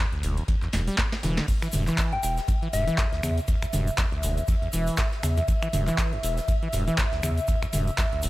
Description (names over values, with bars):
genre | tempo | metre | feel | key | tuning
acid house | 120 BPM | 4/4 | swing 57% on 16ths | E minor | A4 = 439 Hz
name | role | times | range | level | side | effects
acid bass, saw | riff | 0.0-8.3 s | D2 to G3 | -30 LUFS | equal | overdrive
booming analog drum machine | drums | 0.1-8.3 s | crash cymbal, finger snaps, handclaps, hi-hat, snare drum, toms | -30 LUFS | equal | none
round analog bass | bass | 0.2-8.3 s | E1 to E2 | -27 LUFS | equal | sidechain pumping
loose indie drum kit | drums | 0.2-8.3 s | ride cymbal, snare drum | -41 LUFS | left 1 dB | high-pass filter on cymbals, high-pass filter on snare, high-pass filter on room
electronic kick drum | drums | 0.5-8.1 s | none | -26 LUFS | equal | none
lush unison pad | sustained chords | 1.5-8.3 s | E5 | -33 LUFS | right 1 dB | chorus, sidechain pumping
egg shaker | percussion | 1.5-8.3 s | none | -39 LUFS | left 1 dB | none
soft synth bell | melody | 2.1-3.2 s | E5 to G5 | -31 LUFS | left 3 dB | chorus, phaser, tape echo
room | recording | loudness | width
small room ambience | none | -23 LUFS | side -18 dB against mid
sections
0.0-8.3 A section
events
drum fill 0.7-1.5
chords
none